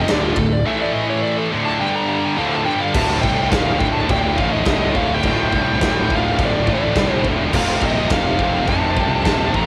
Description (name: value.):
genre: heavy metal.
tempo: 105 BPM.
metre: 4/4.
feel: straight.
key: D minor.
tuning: A4 = 443 Hz.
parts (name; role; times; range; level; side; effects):
bluesy overdriven lead guitar; melody; 0.0-9.7 s; F4 to Bb5; -24 LUFS; equal; distortion, cassette tape.
brassy analog pad; sustained chords; 0.0-9.7 s; A2 to D5; -35 LUFS; equal; none.
scooped high-gain guitar; riff; 0.0-9.7 s; D2 to A3; -25 LUFS; equal; distortion, cassette tape.
scooped high-gain guitar; riff; 0.0-9.7 s; D2 to F4; -28 LUFS; equal; distortion, cassette tape.
tight distorted guitar; riff; 0.0-9.7 s; D2 to A3; -26 LUFS; equal; distortion, cassette tape.
fuzz fingered electric bass; bass; 0.0-9.7 s; D1 to C2; -26 LUFS; equal; overdrive.
big rock drum kit; drums; 0.1-9.7 s; china cymbal, crash cymbal, kick drum, ride cymbal, snare drum; -25 LUFS; equal; none.
room: little or no reverb.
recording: home recording on cassette.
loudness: -18 LUFS.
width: mono.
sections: 0.0-3.0 A section; 3.0-9.7 B section.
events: lead electric guitar solo 0.0-3.0.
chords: 0.0 Dm; 0.7 A5; 1.5 Dm; 1.8 G5; 2.4 Dm; 7.5 F.